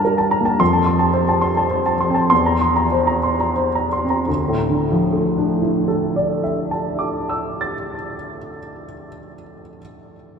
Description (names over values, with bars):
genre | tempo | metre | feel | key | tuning
neoclassical minimalist piano | 84-110 BPM | 3/4 | rubato | D minor | A4 = 441 Hz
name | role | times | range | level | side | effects
dark baby grand piano | solo | 0.0-10.4 s | D2 to A6 | -17 LUFS | equal | wide subtle chorus, ping-pong delay
room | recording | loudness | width
wet cathedral reverb, RT60 5.2 s | dreamy mix soaked in reverb | -16 LUFS | side -6 dB against mid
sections
0.0-4.3 A section; 4.3-8.3 B section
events
slowing down 0.0-4.3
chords
0.0 Gmadd9; 0.6 F; 2.3 C7/E; 4.3 Dmadd9